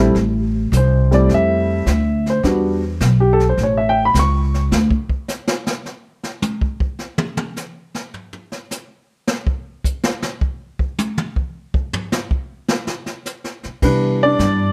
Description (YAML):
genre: jazz piano trio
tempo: 105 BPM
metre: 4/4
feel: swing 69% on 8ths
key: A minor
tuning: A4 = 439 Hz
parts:
  - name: warm baby grand piano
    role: melody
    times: 0.0-4.6, 13.8-14.7 s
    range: E3 to C#6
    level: -19 LUFS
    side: equal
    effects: plate reverb
  - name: upright bass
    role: bass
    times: 0.0-4.9, 13.6-14.7 s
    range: A1 to C3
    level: -19 LUFS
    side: equal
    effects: none
  - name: jazz brush drum kit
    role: drums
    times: 0.2-14.7 s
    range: brushed snare drum, crash cymbal, hi-hat, kick drum, snare drum, toms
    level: -24 LUFS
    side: equal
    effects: none
room: moderate club reverb, RT60 0.8 s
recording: none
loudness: -19 LUFS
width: mono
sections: 0.0-13.8 A section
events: grand piano solo 0.0-13.8; drum solo 4.7-13.8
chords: 0.2 Fmaj7; 2.4 Em7; 3.6 A; 4.7 N.C.; 13.8 Cmaj7